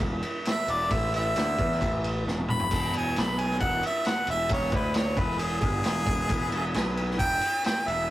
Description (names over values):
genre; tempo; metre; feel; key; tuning
blues rock power trio and southern rock; 134 BPM; 4/4; straight; E mixolydian; A4 = 440 Hz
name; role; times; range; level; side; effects
overdriven tonewheel organ; sustained chords; 0.0-8.1 s; E3 to G#4; -38 LUFS; equal; slow rotary speaker
overdriven picked electric bass; bass; 0.0-8.1 s; E1 to E2; -30 LUFS; equal; none
vintage drum kit; drums; 0.0-8.0 s; crash cymbal, kick drum, ride cymbal, snare drum, toms; -29 LUFS; equal; none
bright harmonica; melody; 0.5-8.1 s; G#4 to B5; -28 LUFS; equal; overdrive
room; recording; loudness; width
moderate booth ambience, RT60 0.2 s; rough rehearsal-room recording, tube saturation; -24 LUFS; side -14 dB against mid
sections
0.0-8.1 A section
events
harmonica solo 0.0-8.1; drum fill 2.3-2.7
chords
0.0 E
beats
0.01 0.47 | 0.92 1.36 1.81 2.26 | 2.71 3.16 3.61 4.06 | 4.51 4.96 5.41 5.86 | 6.30 6.75 7.20 7.65 | 8.10